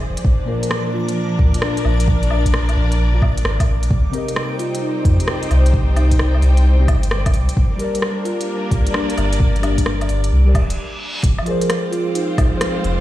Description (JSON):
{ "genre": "future garage", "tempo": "131 BPM", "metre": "4/4", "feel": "swing 66% on 16ths", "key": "C minor", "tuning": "A4 = 440 Hz", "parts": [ { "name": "warm symphonic string section", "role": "sustained chords", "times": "0.0-13.0 s", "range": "F3 to G5", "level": "-26 LUFS", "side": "equal", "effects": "sidechain pumping" }, { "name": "warm sub bass", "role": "bass", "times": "0.0-13.0 s", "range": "D1 to F2", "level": "-16 LUFS", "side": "equal", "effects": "sidechain pumping" }, { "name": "backwards swelling texture", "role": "texture", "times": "0.0-13.0 s", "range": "D5 to D6", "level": "-34 LUFS", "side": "left 2 dB", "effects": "built-in reverb" }, { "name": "electronic kick drum", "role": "drums", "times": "0.2-12.5 s", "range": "none", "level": "-18 LUFS", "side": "equal", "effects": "overdrive, studio reverb" }, { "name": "organic electronic drum kit", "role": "drums", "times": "0.2-13.0 s", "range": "hi-hat, rim click, woodblock", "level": "-25 LUFS", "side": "equal", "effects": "studio reverb" }, { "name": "muted felt-like synth keys", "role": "accompaniment", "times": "0.4-13.0 s", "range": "Bb2 to Eb5", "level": "-26 LUFS", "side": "equal", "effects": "chorus, sidechain pumping, low-pass filter, dub echo" }, { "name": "marimba with soft mallets", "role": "melody", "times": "0.5-12.4 s", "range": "D4 to Bb4", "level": "-27 LUFS", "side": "left 2 dB", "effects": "dub echo" }, { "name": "reverse cymbal", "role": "sound effects", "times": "10.5-11.2 s", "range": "none", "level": "-30 LUFS", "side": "right 1 dB", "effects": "none" } ], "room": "digital ambience", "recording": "played on a big sound system in a bare room, stone room reverb", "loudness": "-15 LUFS", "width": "side -14 dB against mid", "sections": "0.0-11.2 A section; 11.2-13.0 B section", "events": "filter sweep on synth keys 0.0-11.2; reverse cymbal 10.5-11.2; stop 10.8-11.2", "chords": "0.2 Bb; 3.9 Cm; 7.6 Gm; 11.2 Fm", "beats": "| 0.24 0.70 1.16 1.62 | 2.08 2.53 2.99 3.45 | 3.91 4.37 4.82 5.28 | 5.74 6.20 6.66 7.11 | 7.57 8.03 8.49 8.95 | 9.40 9.86 10.32 10.78 | 11.24 11.69 12.15 12.61" }